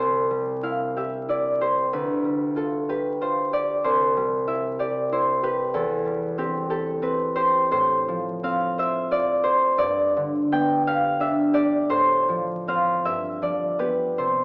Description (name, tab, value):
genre	classical, solo harp piece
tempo	50-64 BPM (dotted quarters)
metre	6/8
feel	rubato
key	C major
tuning	A4 = 440 Hz
part	concert harp	solo	0.0-14.4 s	C2 to G5	-23 LUFS	equal	none
room	moderate recital hall reverb, RT60 1.4 s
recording	vinyl crackle, small speaker sound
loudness	-23 LUFS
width	mono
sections	0.0-14.4 A section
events	none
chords	0.0 C; 1.9 G7/D; 3.8 C; 5.7 C/E; 7.7 F/A; 9.8 G; 11.9 F/A; 13.1 G7